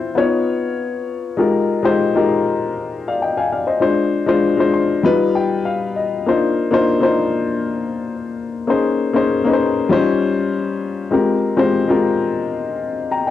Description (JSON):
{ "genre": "soul", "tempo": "98 BPM", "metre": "4/4", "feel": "straight", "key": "unclear", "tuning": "A4 = 440 Hz", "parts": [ { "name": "warm baby grand piano", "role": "solo", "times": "0.0-13.3 s", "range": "G3 to C6", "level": "-16 LUFS", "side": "left 3 dB", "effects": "cassette tape" } ], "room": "moderate studio reverb, RT60 0.6 s", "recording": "home recording on cassette", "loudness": "-16 LUFS", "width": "side -12 dB against mid", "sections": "0.0-1.4 A section; 1.4-13.3 B section", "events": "grand piano fill 4.4-6.3", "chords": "0.2 Db9; 1.4 Fm11; 3.8 Dm7b5; 5.0 G7b13; 6.3 Cm11; 8.7 Bbm11; 9.9 Eb13; 11.1 Abmaj13" }